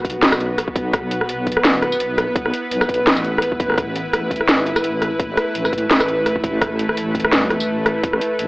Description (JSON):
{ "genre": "half-time drum and bass", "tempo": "169 BPM", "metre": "4/4", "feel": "swing 55% on 16ths, half-time", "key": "unclear", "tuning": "A4 = 438 Hz", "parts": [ { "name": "bowed-like drone", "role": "sustained chords", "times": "0.0-8.5 s", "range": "A3 to B4", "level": "-21 LUFS", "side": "equal", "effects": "built-in reverb, sidechain pumping" }, { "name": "deep soft wobble bass", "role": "bass", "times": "0.0-8.5 s", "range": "A1 to B1", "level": "-26 LUFS", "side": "equal", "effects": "chorus" }, { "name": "drum and bass drum kit", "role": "drums", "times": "0.0-8.5 s", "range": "hi-hat, rim click, snare drum, tambourine", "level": "-18 LUFS", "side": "equal", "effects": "none" }, { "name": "electronic kick drum", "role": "drums", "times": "0.0-8.1 s", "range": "none", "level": "-24 LUFS", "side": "equal", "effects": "none" } ], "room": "light reverb", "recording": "dry, gritty hardware recording, cassette tape, AM radio sound", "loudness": "-16 LUFS", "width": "side -23 dB against mid", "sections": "0.0-8.5 A section", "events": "none", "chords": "0.0 B5; 3.8 A5" }